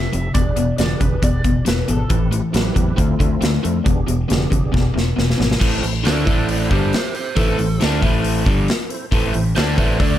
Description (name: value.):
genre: blues rock power trio and southern rock.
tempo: 137 BPM.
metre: 4/4.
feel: straight.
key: A minor.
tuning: A4 = 440 Hz.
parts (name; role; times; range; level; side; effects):
lightly driven lead guitar; melody; 0.0-3.6 s; A4 to E5; -28 LUFS; right 1 dB; wah.
crunchy overdriven guitar; riff; 0.0-10.2 s; E2 to D4; -21 LUFS; left 1 dB; none.
growling fingered electric bass; bass; 0.0-10.2 s; E1 to F2; -21 LUFS; equal; overdrive.
tonewheel organ; sustained chords; 0.1-10.2 s; A3 to G#5; -31 LUFS; right 3 dB; slow rotary speaker, overdrive, chorus vibrato.
big rock drum kit; drums; 0.1-10.1 s; crash cymbal, hi-hat, kick drum, snare drum; -20 LUFS; equal; none.
biting lead guitar; second line; 6.1-10.2 s; G4 to D5; -26 LUFS; right 5 dB; overdrive.
room: little or no reverb.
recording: none.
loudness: -16 LUFS.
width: side -12 dB against mid.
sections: 0.0-5.6 A section; 5.6-10.2 B section.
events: drum fill 4.7-5.6; tonewheel organ fill 5.0-5.6; lead electric guitar solo 5.6-10.2.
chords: 0.3 E7#9; 2.1 Am7; 3.0 Dm7; 3.9 E7#9; 5.6 Am.